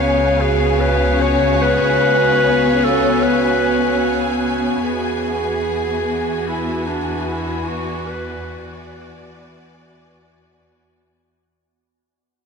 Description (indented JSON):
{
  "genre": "ambient",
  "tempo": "free time",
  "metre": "none",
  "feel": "none",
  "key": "unclear",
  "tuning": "A4 = 440 Hz",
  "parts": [
    { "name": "clear clarinet", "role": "melody", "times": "0.0-8.9 s", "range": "D4 to C#5", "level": "-19 LUFS", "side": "equal", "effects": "ping-pong delay" },
    { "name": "rich symphonic string section", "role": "sustained chords", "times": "0.0-11.4 s", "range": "C#3 to G#5", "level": "-20 LUFS", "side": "left 2 dB", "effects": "none" },
    { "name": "warm studio double bass section", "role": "bass", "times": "0.0-11.3 s", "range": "C#2 to E2", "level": "-25 LUFS", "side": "equal", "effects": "none" },
    { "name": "organ-like drone", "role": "drone", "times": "0.0-11.5 s", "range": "B3 to F#4", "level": "-25 LUFS", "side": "right 2 dB", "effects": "ensemble chorus, built-in reverb" }
  ],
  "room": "wet cathedral reverb, RT60 5.5 s",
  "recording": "none",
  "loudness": "-15 LUFS",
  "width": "side -5 dB against mid",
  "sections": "0.0-11.4 A section",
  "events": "fade-out 2.7-11.4",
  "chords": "0.0 C#7; 4.8 E7"
}